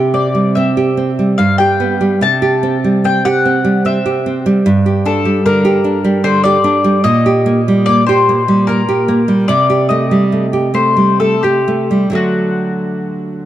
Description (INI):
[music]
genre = romantic duo for mandolin and classical guitar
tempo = 62-76 BPM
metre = 3/4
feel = rubato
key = G minor from 4.7 s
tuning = A4 = 440 Hz
[part]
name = nylon-string guitar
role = accompaniment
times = 0.0-13.5 s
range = G2 to G4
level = -12 LUFS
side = right 2 dB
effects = none
[part]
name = mandolin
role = melody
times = 0.1-13.5 s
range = F#4 to A5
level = -16 LUFS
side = left 4 dB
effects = none
[sound]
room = light reverb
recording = dark, warm production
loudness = -11 LUFS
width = side -12 dB against mid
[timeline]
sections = 0.0-13.5 A section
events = none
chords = 0.0 C; 1.4 G; 2.2 C; 4.7 Gm; 7.1 Gm/Bb; 9.5 Am7b5/C; 12.2 D